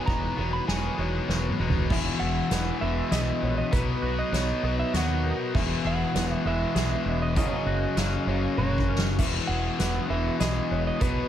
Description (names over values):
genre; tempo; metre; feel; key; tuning
post-rock; 99 BPM; 3/4; straight; E lydian; A4 = 441 Hz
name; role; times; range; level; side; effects
electric slide guitar; melody; 0.0-11.3 s; B4 to B5; -33 LUFS; right 4 dB; digital delay
airy breathy pad; sustained chords; 0.0-11.3 s; F#3 to B4; -38 LUFS; right 4 dB; chorus
felt-muted upright piano; arpeggios; 0.0-11.3 s; A#4 to E5; -40 LUFS; right 7 dB; digital delay
twangy electric guitar; arpeggios; 0.0-11.3 s; E2 to G#4; -36 LUFS; equal; ensemble chorus, digital delay
cranked stack guitar; riff; 0.0-11.3 s; E2 to B3; -29 LUFS; left 5 dB; overdrive
growling fingered electric bass; bass; 0.1-11.2 s; E1 to D#2; -29 LUFS; equal; overdrive
soft-mallet drum kit; drums; 0.1-11.2 s; crash cymbal, hi-hat, kick drum, snare drum, toms; -29 LUFS; equal; none
room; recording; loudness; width
light reverb, small room ambience; none; -24 LUFS; side -10 dB against mid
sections
0.0-1.9 A section; 1.9-11.3 B section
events
build-up 0.0-1.9; drum fill 1.3-1.9, 8.6-9.2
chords
0.0 B6/E; 1.9 E; 3.7 B; 5.5 E; 7.4 F#; 9.2 E